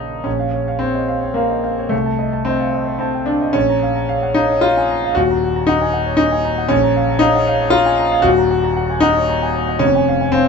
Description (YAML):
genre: classical, romantic character piece for solo piano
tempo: 92-119 BPM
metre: 3/4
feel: rubato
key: Bb minor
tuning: A4 = 441 Hz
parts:
  - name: warm concert grand piano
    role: solo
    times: 0.0-10.5 s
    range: Eb1 to Bb5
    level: -14 LUFS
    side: left 1 dB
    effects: none
room: moderate studio reverb, RT60 0.9 s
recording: nothing above 7.6 kHz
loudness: -14 LUFS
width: side -5 dB against mid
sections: 0.3-10.5 A section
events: none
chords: 0.3 Bbm; 1.9 Adim/C; 3.6 Bbm; 5.2 Ebm7; 6.7 Bbm; 8.2 Ebm7; 9.8 Db/F